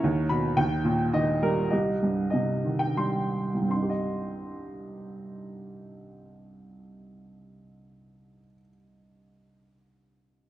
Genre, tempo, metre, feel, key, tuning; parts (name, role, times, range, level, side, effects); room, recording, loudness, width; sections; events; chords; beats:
classical, lyrical solo piano; 72-117 BPM; 3/4; rubato; C minor; A4 = 439 Hz
warm upright piano; solo; 0.0-10.5 s; C2 to C6; -25 LUFS; right 1 dB
moderate recital hall reverb, RT60 1.3 s; nothing above 10.8 kHz; -24 LUFS; side -14 dB against mid
0.0-1.7 A section; 1.7-3.7 B section; 3.7-8.5 C section
upright piano fill 0.0-1.7; slowing down 0.0-3.7
0.0 C#m13/D#; 0.6 D#; 1.7 Cm
| 0.03 0.56 1.12 | 1.71 2.32 2.97 | 3.71 4.53 5.32 | 6.09 6.86 7.65